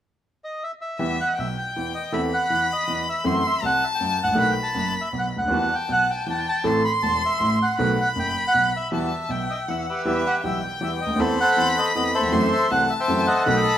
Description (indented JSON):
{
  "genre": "tango",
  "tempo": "159 BPM",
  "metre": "3/4",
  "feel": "rubato",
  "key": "E harmonic minor",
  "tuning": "A4 = 440 Hz",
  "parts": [
    { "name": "bandoneon", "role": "melody", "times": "0.4-13.8 s", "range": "G4 to B5", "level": "-23 LUFS", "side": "equal", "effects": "none" },
    { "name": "rich violin", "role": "second line", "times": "1.0-13.8 s", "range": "E5 to C6", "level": "-26 LUFS", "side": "left 1 dB", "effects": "none" },
    { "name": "clear grand piano", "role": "accompaniment", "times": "1.0-13.6 s", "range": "E1 to A4", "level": "-25 LUFS", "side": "right 1 dB", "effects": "none" }
  ],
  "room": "moderate stone room reverb, RT60 1.3 s",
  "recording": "band playing live in one room",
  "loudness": "-20 LUFS",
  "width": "side -10 dB against mid",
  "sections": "1.0-10.1 A section; 10.1-13.8 A section",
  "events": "none",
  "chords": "0.0 N.C.; 1.0 Em; 2.1 Amadd9/E; 3.3 F#m7b5; 4.4 B7; 5.5 Emadd9; 6.7 Am; 7.8 B7; 8.9 Emadd9; 10.1 Em; 11.2 Amadd9/E; 12.3 F#m7b5",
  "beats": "0.24 0.62 | 1.00 1.38 1.75 | 2.13 2.51 2.88 | 3.26 3.64 4.01 | 4.39 4.77 5.15 | 5.52 5.90 6.28 | 6.66 7.03 7.41 | 7.79 8.16 8.54 | 8.92 9.30 9.68 | 10.06 10.44 10.81 | 11.19 11.57 11.95 | 12.33 12.71 13.08 | 13.46"
}